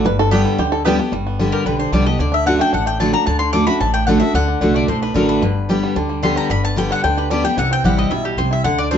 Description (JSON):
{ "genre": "bluegrass", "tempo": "223 BPM", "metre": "4/4", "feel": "straight", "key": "G major", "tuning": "A4 = 439 Hz", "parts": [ { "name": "bluegrass banjo", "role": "melody", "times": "0.0-9.0 s", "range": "D3 to B4", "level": "-23 LUFS", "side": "right 2 dB", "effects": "plate reverb" }, { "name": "picked steel-string acoustic guitar", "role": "accompaniment", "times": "0.0-9.0 s", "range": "G2 to G4", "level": "-18 LUFS", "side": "left 1 dB", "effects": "none" }, { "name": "upright bass", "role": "bass", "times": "0.0-9.0 s", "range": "G1 to D2", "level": "-22 LUFS", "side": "equal", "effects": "none" }, { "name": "mandolin", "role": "stabs", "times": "0.3-0.9 s", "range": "B3 to G5", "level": "-24 LUFS", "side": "right 6 dB", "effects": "none" }, { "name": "mandolin", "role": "melody", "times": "1.5-9.0 s", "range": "G4 to D6", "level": "-21 LUFS", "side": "left 3 dB", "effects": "plate reverb" } ], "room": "moderate studio reverb, RT60 0.5 s", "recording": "dark, warm production, nothing above 7.8 kHz", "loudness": "-15 LUFS", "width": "side -8 dB against mid", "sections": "0.0-1.1 A section; 1.1-9.0 B section", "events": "five-string banjo solo 0.0-1.1", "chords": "0.1 G; 2.2 D; 5.4 G; 7.6 C", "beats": "| 0.06 0.32 0.59 0.86 | 1.12 1.39 1.66 1.93 | 2.20 2.47 2.73 3.00 | 3.27 3.54 3.81 4.08 | 4.34 4.61 4.88 5.15 | 5.42 5.69 5.96 6.23 | 6.50 6.77 7.04 7.30 | 7.57 7.84 8.11 8.38 | 8.65 8.92" }